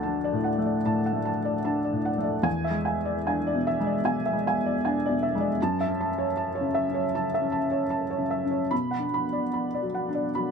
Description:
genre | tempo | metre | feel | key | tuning
neoclassical minimalist piano | 75 BPM | 4/4 | rubato | F# minor | A4 = 440 Hz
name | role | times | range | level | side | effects
felt-muted upright piano | solo | 0.0-10.5 s | D2 to B5 | -24 LUFS | equal | none
room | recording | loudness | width
little or no reverb | close, detailed microphones | -24 LUFS | side -6 dB against mid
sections
0.0-10.5 A section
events
none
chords
0.0 D; 2.5 E7; 5.6 F#m7; 8.7 Bm

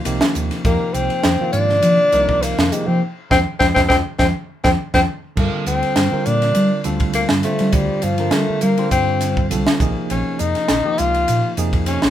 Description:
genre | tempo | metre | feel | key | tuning
electric jazz fusion | 102 BPM | 4/4 | swing 54% on 16ths | G phrygian | A4 = 437 Hz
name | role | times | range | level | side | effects
bell-like tine electric piano | accompaniment | 0.1-12.1 s | C3 to C5 | -24 LUFS | right 1 dB | medium stereo tremolo
hollow-body short-scale fingered electric bass | bass | 0.1-12.1 s | Bb1 to G3 | -21 LUFS | equal | none
crisp fusion drum kit | drums | 0.1-12.1 s | crash cymbal, hi-hat, kick drum, ride cymbal, snare drum | -21 LUFS | right 1 dB | none
breathy tenor saxophone | melody | 0.7-12.1 s | F3 to F4 | -18 LUFS | left 2 dB | none
room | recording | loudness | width
moderate studio ambience, RT60 0.5 s | band playing live in one room | -15 LUFS | side -11 dB against mid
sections
0.0-5.4 A section; 5.4-12.1 A section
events
band accent 3.0-5.4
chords
0.0 Cm7; 0.6 Fm11; 5.4 Gm11; 9.8 Bbm11

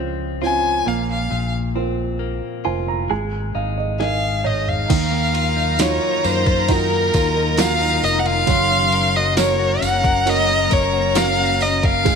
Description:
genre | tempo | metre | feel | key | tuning
pop ballad | 67 BPM | 4/4 | straight | unclear | A4 = 439 Hz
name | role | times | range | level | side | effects
dark baby grand piano | accompaniment | 0.0-12.2 s | Db3 to Bb5 | -25 LUFS | right 13 dB | none
direct-recorded clean electric guitar | arpeggios | 0.0-12.2 s | Bb2 to Bb4 | -26 LUFS | left 11 dB | none
fingered electric bass | bass | 0.0-12.2 s | F1 to Gb2 | -24 LUFS | equal | none
rich violin | melody | 0.4-12.2 s | Bb4 to Ab5 | -20 LUFS | left 2 dB | none
smooth R&B drum kit | drums | 4.0-12.2 s | crash cymbal, kick drum, ride cymbal, snare drum, toms | -24 LUFS | equal | none
warm studio violin section | second line | 4.9-12.2 s | Ab5 to C6 | -25 LUFS | right 2 dB | none
granular cloud pad | sustained chords | 5.6-12.2 s | C3 to F5 | -28 LUFS | left 1 dB | built-in reverb
tambourine | percussion | 4.9-12.2 s | none | -30 LUFS | right 16 dB | none
room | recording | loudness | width
light reverb, small room ambience | 1960s-style stereo with parts hard left and right | -16 LUFS | side -6 dB against mid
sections
0.0-4.9 A section; 4.9-12.2 B section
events
grand piano fill 2.2-4.9; drum fill 4.0-4.9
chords
0.0 Dbmaj7; 0.9 Bbsus2; 3.1 Absus2; 4.9 Ebmadd9; 8.5 Gb

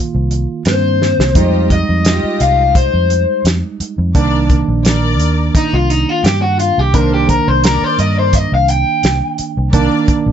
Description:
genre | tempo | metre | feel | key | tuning
straight-eighth soul blues | 86 BPM | 4/4 | straight | C minor | A4 = 441 Hz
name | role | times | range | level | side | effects
tine electric piano | accompaniment | 0.0-10.3 s | Eb3 to F4 | -19 LUFS | right 6 dB | none
vintage muted fingered electric bass | bass | 0.1-10.3 s | Bb1 to G2 | -15 LUFS | equal | none
warm soul drum kit | drums | 0.3-10.3 s | hi-hat, kick drum, snare drum | -15 LUFS | equal | none
overdriven semi-hollow guitar | melody | 0.7-10.3 s | Eb4 to G5 | -15 LUFS | left 4 dB | none
rich studio string section | sustained chords | 1.4-10.1 s | D4 to Eb5 | -23 LUFS | left 2 dB | none
room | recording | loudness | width
light reverb | nothing above 7.9 kHz | -11 LUFS | side -9 dB against mid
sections
0.0-10.3 A section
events
overdriven electric guitar solo 0.0-10.3; drum fill 1.0-1.4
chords
0.0 Cm7; 1.4 Fm9; 4.2 Cm9

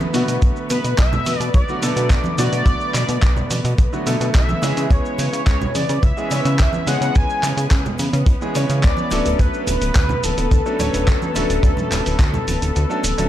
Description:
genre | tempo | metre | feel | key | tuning
nu-disco, nu disco | 107 BPM | 4/4 | straight | B dorian | A4 = 440 Hz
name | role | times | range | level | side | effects
clear concert grand piano | accompaniment | 0.0-13.3 s | D3 to C#5 | -25 LUFS | right 2 dB | none
muted studio string section | sustained chords | 0.0-13.3 s | B3 to B4 | -29 LUFS | left 2 dB | sidechain pumping
dusty soul sampler-style drum kit | drums | 0.0-13.3 s | cabasa, handclaps, hi-hat | -26 LUFS | right 1 dB | none
congas and tube shaker | percussion | 0.0-13.3 s | none | -29 LUFS | right 2 dB | none
chorused synth bass | bass | 0.1-13.3 s | D1 to C#3 | -21 LUFS | equal | none
kick drum | drums | 0.4-12.3 s | none | -16 LUFS | equal | none
wide unison lead | melody | 0.7-13.3 s | A4 to G#5 | -24 LUFS | left 2 dB | lush chorus, cassette tape, ping-pong delay
room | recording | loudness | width
studio ambience | none | -16 LUFS | side -12 dB against mid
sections
0.0-13.3 A section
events
kick drops out 12.8-13.3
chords
0.0 Bm7; 4.6 C#m7; 9.1 Dmaj7

